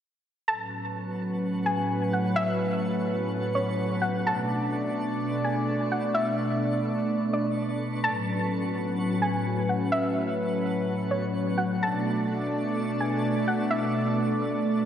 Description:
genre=hip hop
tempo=127 BPM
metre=4/4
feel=half-time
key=A major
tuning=A4 = 440 Hz
part: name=soft round pluck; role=melody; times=0.5-14.8 s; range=C#5 to A5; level=-30 LUFS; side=equal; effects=chorus, tape echo
part: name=warm analog pad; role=sustained chords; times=0.5-14.9 s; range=A2 to D5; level=-26 LUFS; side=equal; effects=chorus
part: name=twinkling granular texture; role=texture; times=0.7-14.9 s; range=B3 to C#6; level=-37 LUFS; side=equal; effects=built-in reverb
room=wet lush hall reverb, RT60 2.8 s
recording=dreamy mix soaked in reverb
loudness=-25 LUFS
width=side -9 dB against mid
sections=0.5-14.9 A section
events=none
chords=0.5 A69; 4.3 Bm9; 8.0 A69; 11.8 Bm9

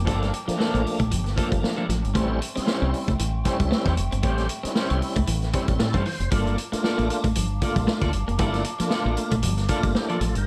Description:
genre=funk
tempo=115 BPM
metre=4/4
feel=swing 56% on 16ths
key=unclear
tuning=A4 = 440 Hz
part: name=electric guitar at the edge of break-up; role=accompaniment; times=0.0-10.4 s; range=F3 to D5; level=-34 LUFS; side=equal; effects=analog chorus
part: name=mellow large flute ensemble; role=sustained chords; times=0.0-10.4 s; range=E5 to D6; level=-40 LUFS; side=equal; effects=none
part: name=clean electric guitar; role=riff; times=0.0-10.3 s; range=E3 to B#3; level=-33 LUFS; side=equal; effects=none
part: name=deep dub fingered electric bass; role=bass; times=0.0-10.5 s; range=F1 to A2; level=-28 LUFS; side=equal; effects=none
part: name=tonewheel organ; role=stabs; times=0.1-10.5 s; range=F3 to B#4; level=-31 LUFS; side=equal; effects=overdrive, chorus vibrato, slow rotary speaker
part: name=vintage drum kit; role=drums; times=0.1-10.5 s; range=hi-hat, kick drum, snare drum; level=-29 LUFS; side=equal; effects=none
room=light reverb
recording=none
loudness=-24 LUFS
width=mono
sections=0.0-10.5 A section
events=tonewheel organ fill 5.5-6.3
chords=0.0 Gm9; 2.2 A7#9; 6.3 Gm9

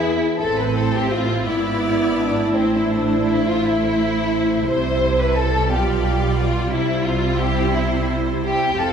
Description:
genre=classical, slow romantic movement for string orchestra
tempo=51-60 BPM (dotted quarters)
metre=6/8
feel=rubato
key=A minor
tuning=A4 = 439 Hz
part: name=warm studio violin section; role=second line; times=0.0-8.9 s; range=C4 to E5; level=-21 LUFS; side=left 2 dB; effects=none
part: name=rich studio viola section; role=accompaniment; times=0.0-8.9 s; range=G3 to G#4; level=-22 LUFS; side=right 2 dB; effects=none
part: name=warm studio double bass section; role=bass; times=0.0-8.9 s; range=F1 to E2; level=-25 LUFS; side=right 2 dB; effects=none
part: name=clear studio violin section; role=melody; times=0.4-8.9 s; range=C5 to D5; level=-30 LUFS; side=left 6 dB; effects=none
part: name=rich studio cello section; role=bass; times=0.4-8.9 s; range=F2 to C3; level=-26 LUFS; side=right 3 dB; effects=none
room=wet church reverb, RT60 2.4 s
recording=recorded in a church or concert hall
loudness=-17 LUFS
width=side -7 dB against mid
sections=0.4-8.9 A section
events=none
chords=0.4 Am; 1.5 E7/G#; 2.5 Am; 4.7 C; 5.7 G7/B; 6.7 C

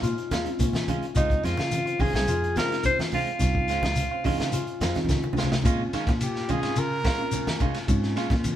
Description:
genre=afrobeat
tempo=107 BPM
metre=4/4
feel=straight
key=Bb minor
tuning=A4 = 438 Hz
part: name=Celtic harp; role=arpeggios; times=0.0-8.6 s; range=Db4 to F4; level=-33 LUFS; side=left 10 dB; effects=none
part: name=semi-hollow electric guitar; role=stabs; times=0.0-8.3 s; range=Ab3 to F4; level=-34 LUFS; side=right 6 dB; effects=none
part: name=fingered electric bass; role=bass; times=0.0-8.5 s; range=C2 to Eb3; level=-29 LUFS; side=equal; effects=none
part: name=crunchy breakbeat drum kit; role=drums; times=0.0-8.6 s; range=hi-hat, kick drum, ride cymbal, snare drum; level=-29 LUFS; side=equal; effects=none
part: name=shekere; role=percussion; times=0.0-8.6 s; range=none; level=-33 LUFS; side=left 1 dB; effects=none
part: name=congas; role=percussion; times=0.3-8.6 s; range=none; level=-31 LUFS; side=equal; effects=none
part: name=bell-like tine electric piano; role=accompaniment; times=0.5-8.2 s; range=Ab3 to F4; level=-34 LUFS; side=right 4 dB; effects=none
part: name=warm alto saxophone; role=melody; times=1.2-5.1 s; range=Eb4 to C5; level=-27 LUFS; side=equal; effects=none
part: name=warm trumpet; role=melody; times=6.2-7.6 s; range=G4 to Bb4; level=-30 LUFS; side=right 2 dB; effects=none
room=moderate stone room reverb, RT60 1.0 s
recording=band playing live in one room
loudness=-23 LUFS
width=side -11 dB against mid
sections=0.0-5.6 A section; 5.6-8.6 B section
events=drum fill 4.9-5.6; trumpet solo 5.6-8.6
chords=0.0 Bbm7; 1.2 Dbmaj7; 5.6 Bbm7

